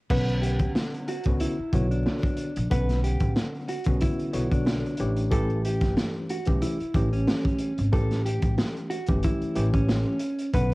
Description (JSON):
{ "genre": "hip hop, boom-bap hip-hop", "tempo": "92 BPM", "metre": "4/4", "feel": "swing 54% on 16ths", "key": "B minor", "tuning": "A4 = 439 Hz", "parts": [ { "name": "mellow electric guitar", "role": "melody", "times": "0.1-10.7 s", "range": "C#4 to B4", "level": "-31 LUFS", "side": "equal", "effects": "high-pass filter, low-pass filter, cassette tape" }, { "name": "mellow tine electric piano", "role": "accompaniment", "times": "0.1-10.7 s", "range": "D3 to F#5", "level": "-30 LUFS", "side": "equal", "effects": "medium stereo tremolo, cassette tape, high-pass filter, low-pass filter" }, { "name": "upright bass", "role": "bass", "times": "0.1-10.7 s", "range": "G1 to D2", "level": "-27 LUFS", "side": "equal", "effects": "tube saturation" }, { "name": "crunchy breakbeat drum kit", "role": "drums", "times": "0.1-10.7 s", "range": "crash cymbal, hi-hat, kick drum, snare drum", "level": "-27 LUFS", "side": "equal", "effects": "cassette tape" } ], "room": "little or no reverb", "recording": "home recording on cassette, vinyl crackle", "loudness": "-23 LUFS", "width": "side -22 dB against mid", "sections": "0.1-10.7 A section", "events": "none", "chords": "0.1 Bmadd9; 5.0 A7" }